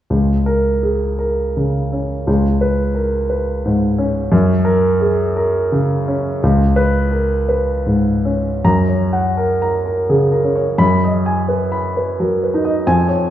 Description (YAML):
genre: classical, romantic character piece for solo piano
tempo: 74-91 BPM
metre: 3/4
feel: rubato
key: F# major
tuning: A4 = 441 Hz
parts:
  - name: warm grand piano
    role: solo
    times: 0.1-13.3 s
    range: C#2 to B5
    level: -14 LUFS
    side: equal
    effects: none
room: wet recital hall reverb, RT60 1.4 s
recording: heard from further back in the room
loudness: -14 LUFS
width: side -11 dB against mid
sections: 0.1-8.6 A section; 8.6-13.3 B section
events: none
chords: 0.1 A#m7/C#; 2.3 C#5; 4.3 F#; 6.4 C#5; 8.6 F#; 10.8 G#m7/F#